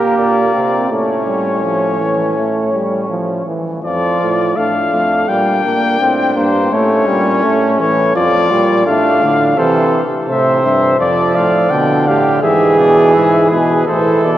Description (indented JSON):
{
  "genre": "classical, imitative canzona for brass ensemble",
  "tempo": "83 BPM",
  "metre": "4/4",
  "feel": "straight",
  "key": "D minor",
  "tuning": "A4 = 440 Hz",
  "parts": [
    { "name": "warm trumpet", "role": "melody", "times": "0.0-14.4 s", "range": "Bb4 to G5", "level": "-17 LUFS", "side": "left 4 dB", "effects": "none" },
    { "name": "warm flugelhorn", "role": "second line", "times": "0.0-14.4 s", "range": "C4 to D5", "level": "-16 LUFS", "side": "right 2 dB", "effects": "none" },
    { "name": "bright trombone", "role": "accompaniment", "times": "0.0-14.4 s", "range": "C3 to C4", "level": "-17 LUFS", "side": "right 1 dB", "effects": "none" },
    { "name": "warm euphonium", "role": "bass", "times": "0.0-14.4 s", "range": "F2 to C3", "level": "-19 LUFS", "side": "right 1 dB", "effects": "none" }
  ],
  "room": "wet cathedral reverb, RT60 4.1 s",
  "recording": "worn, warbling old tape, cassette tape, warbly pitch drift",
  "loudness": "-11 LUFS",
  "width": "side -13 dB against mid",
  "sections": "0.0-3.8 A section; 3.8-14.4 B section",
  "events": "none",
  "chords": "0.0 Gm; 0.9 A; 3.8 Dm/F; 5.3 Gm/Bb; 6.7 A; 8.2 Dm/F; 9.6 Am/C; 11.0 Dm/F; 12.4 E/G#; 13.9 Am"
}